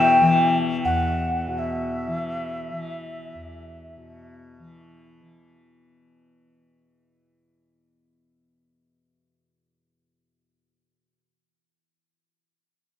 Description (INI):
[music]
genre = world meditative, free-time meditation music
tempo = free time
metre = none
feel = none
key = unclear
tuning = A4 = 442 Hz
[part]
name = xiao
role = melody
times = 0.0-4.4 s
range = E5 to G5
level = -22 LUFS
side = left 1 dB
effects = none
[part]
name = tanpura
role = drone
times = 0.0-12.4 s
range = E2 to E3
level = -26 LUFS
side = left 2 dB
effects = none
[part]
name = crotales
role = texture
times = 0.0-6.0 s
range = E7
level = -31 LUFS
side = right 1 dB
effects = none
[sound]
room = wet huge ambient reverb, RT60 4.1 s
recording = worn, warbling old tape, cassette tape, warbly pitch drift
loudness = -21 LUFS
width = side -11 dB against mid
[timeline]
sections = 0.0-5.8 A section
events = fade-out 0.0-5.8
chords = none